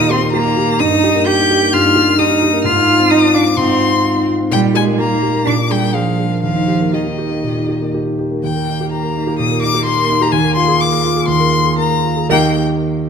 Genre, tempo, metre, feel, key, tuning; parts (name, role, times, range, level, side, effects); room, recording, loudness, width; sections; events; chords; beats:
quick classical-period movement for piano trio; 115-131 BPM; 4/4; rubato; Eb major; A4 = 440 Hz
warm violin; melody; 0.0-12.6 s; Eb5 to G6; -17 LUFS; left 6 dB
warm cello; second line; 0.0-12.6 s; Eb3 to G4; -18 LUFS; right 7 dB
dark grand piano; accompaniment; 0.0-13.1 s; Eb2 to Eb5; -15 LUFS; equal
wet recital hall reverb, RT60 1.8 s; -12 LUFS; side -6 dB against mid
0.0-8.4 A section; 8.4-12.3 B section
0.0 Eb; 0.8 Eb/G; 2.6 Fm7/Ab; 4.5 Eb/Bb; 5.5 Bb7; 6.4 Eb; 10.3 Bb7/Eb; 12.3 Eb
0.34 | 0.80 1.26 1.73 2.19 | 2.65 3.11 3.57 4.04 | 4.52 4.99 5.46 5.94 | 6.43 6.94 7.44 7.94 | 8.43 8.92 9.39 9.86 | 10.33 10.81 11.29 11.79 | 12.30 12.79